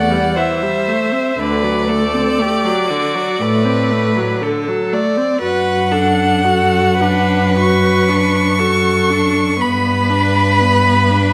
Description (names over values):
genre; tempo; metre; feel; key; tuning
classical, slow romantic movement for string quartet; 59 BPM; 4/4; rubato; D major from 5.4 s; A4 = 440 Hz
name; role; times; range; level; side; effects
rich violin; melody; 0.0-11.3 s; D5 to C#6; -20 LUFS; equal; none
rich violin; second line; 0.0-11.3 s; F#4 to D5; -22 LUFS; equal; none
rich viola; accompaniment; 0.0-11.3 s; D3 to F#4; -21 LUFS; equal; none
warm cello; bass; 0.0-11.3 s; D2 to A2; -21 LUFS; equal; none
room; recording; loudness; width
wet recital hall reverb, RT60 1.5 s; none; -15 LUFS; mono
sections
0.0-11.3 A section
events
none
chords
0.0 Am7; 1.4 D7; 5.4 D/F#; 9.6 G